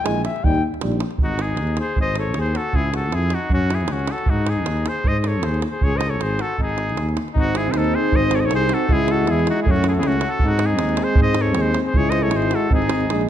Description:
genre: balkan folk, Balkan brass band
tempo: 156 BPM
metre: 2/4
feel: swing 54% on 16ths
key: G# phrygian dominant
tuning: A4 = 440 Hz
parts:
  - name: clear flugelhorn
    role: second line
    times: 0.0-13.3 s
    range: C#4 to G#5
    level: -28 LUFS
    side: left 6 dB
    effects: none
  - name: warm euphonium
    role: accompaniment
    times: 0.0-1.0, 7.3-13.3 s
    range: G3 to B#3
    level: -25 LUFS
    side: right 8 dB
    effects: none
  - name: mellow tuba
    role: bass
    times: 0.0-13.3 s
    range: G#1 to G#2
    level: -22 LUFS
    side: equal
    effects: none
  - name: dark euphonium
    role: accompaniment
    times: 0.1-1.0, 7.4-13.3 s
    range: B#3 to E4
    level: -24 LUFS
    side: left 5 dB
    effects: none
  - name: davul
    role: percussion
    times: 0.1-13.3 s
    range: none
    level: -23 LUFS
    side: right 2 dB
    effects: none
  - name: cornet with straight mute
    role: melody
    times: 1.2-13.3 s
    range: F#4 to D#5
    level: -25 LUFS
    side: right 1 dB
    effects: none
room: light reverb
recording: dark, warm production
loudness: -17 LUFS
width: side -10 dB against mid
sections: 0.0-1.2 A section; 1.2-7.4 B section; 7.4-13.3 B section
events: flugelhorn solo 0.0-1.2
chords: 0.4 Eb; 1.2 G#5; 2.7 C#madd11; 3.5 F#5; 4.3 G#5; 5.8 C#5; 6.6 G#5; 7.4 G#; 8.9 C#m; 9.7 F#m; 10.4 G#; 11.9 C#m; 12.7 G#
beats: 0.04 | 0.43 0.81 | 1.20 1.58 | 1.96 2.35 | 2.73 3.12 | 3.50 3.89 | 4.28 4.66 | 5.05 5.43 | 5.82 6.20 | 6.59 6.97 | 7.36 7.74 | 8.12 8.51 | 8.89 9.27 | 9.65 10.04 | 10.42 10.80 | 11.19 11.57 | 11.95 12.33 | 12.71 13.10

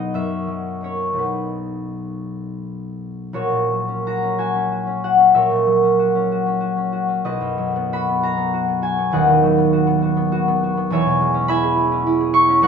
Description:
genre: classical, solo harp piece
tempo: 53-72 BPM (dotted quarters)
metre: 6/8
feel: rubato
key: B major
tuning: A4 = 440 Hz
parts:
  - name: concert harp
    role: solo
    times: 0.0-12.7 s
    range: D#1 to C#6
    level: -17 LUFS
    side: equal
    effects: none
room: light reverb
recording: minimal, uncompressed stereo recording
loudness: -16 LUFS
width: side -6 dB against mid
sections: 0.0-3.3 A section; 3.3-12.7 B section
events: none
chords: 0.1 F#7; 1.2 B; 3.3 F#/A#; 7.2 B; 9.1 B/D#; 10.9 C#m7/E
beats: 0.14 | 1.18 2.24 | 3.34 4.39 | 5.34 6.29 | 7.24 8.24 | 9.13 10.04 | 10.93 11.79 | 12.63

